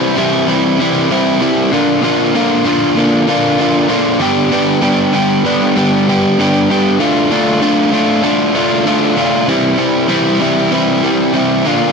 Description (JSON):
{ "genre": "rock", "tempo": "96 BPM", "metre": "4/4", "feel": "straight", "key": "unclear", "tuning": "A4 = 440 Hz", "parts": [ { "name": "overdriven electric guitar", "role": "solo", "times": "0.0-11.9 s", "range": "G2 to G4", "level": "-10 LUFS", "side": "equal", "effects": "none" } ], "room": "little or no reverb", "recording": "dry, close 1970s-style studio recording", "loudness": "-10 LUFS", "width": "side -5 dB against mid", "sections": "0.0-11.9 A section", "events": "none", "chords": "0.0 C; 1.7 Bb; 4.2 G; 7.0 Dm; 9.5 C", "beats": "0.16 0.78 1.40 | 2.02 2.64 3.27 3.89 | 4.51 5.13 5.75 6.37 | 7.00 7.62 8.24 8.86 | 9.49 10.11 10.73 11.36" }